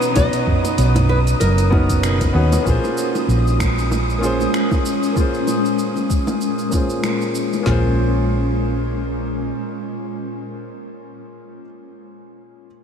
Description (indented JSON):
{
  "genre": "sunset chillout",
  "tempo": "96 BPM",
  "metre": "4/4",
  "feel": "swing 56% on 16ths",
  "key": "Bb minor",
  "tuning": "A4 = 440 Hz",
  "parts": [
    { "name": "warm concert grand piano", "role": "accompaniment", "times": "0.0-12.7 s", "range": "Bb3 to C5", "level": "-23 LUFS", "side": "equal", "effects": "auto-pan, low-pass filter, analog delay" },
    { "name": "ethereal airy pad", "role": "sustained chords", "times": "0.0-10.9 s", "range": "Bb2 to A#5", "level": "-24 LUFS", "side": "left 2 dB", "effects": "ensemble chorus, built-in reverb, phaser" },
    { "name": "smooth R&B drum kit", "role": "drums", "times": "0.0-7.6 s", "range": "finger snaps, hi-hat, shaker, toms", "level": "-28 LUFS", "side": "right 1 dB", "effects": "none" },
    { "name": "wind-like tuned noise texture", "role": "texture", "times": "0.0-7.7 s", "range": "Eb6", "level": "-30 LUFS", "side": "left 3 dB", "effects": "built-in reverb" },
    { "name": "flamenco guitar", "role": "melody", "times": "0.2-2.3 s", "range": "A#4 to D#5", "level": "-26 LUFS", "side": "right 1 dB", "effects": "ping-pong delay" },
    { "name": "hollow-body short-scale fingered electric bass", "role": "bass", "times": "0.2-9.5 s", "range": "F#1 to D#2", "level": "-18 LUFS", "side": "equal", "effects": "none" },
    { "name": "smooth R&B drum kit", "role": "drums", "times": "0.2-7.8 s", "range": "kick drum, snare drum, toms", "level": "-21 LUFS", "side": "equal", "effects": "none" },
    { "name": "bongos", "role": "percussion", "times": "0.2-7.6 s", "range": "none", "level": "-29 LUFS", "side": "equal", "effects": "none" }
  ],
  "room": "moderate huge ambient reverb, RT60 8.1 s",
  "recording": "dreamy mix soaked in reverb",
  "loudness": "-16 LUFS",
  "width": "side -7 dB against mid",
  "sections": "0.0-2.7 A section; 2.7-7.7 B section; 7.7-10.2 C section",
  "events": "filter sweep on grand piano 2.7-7.7",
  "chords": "0.0 Bmaj7; 2.7 Bbm7"
}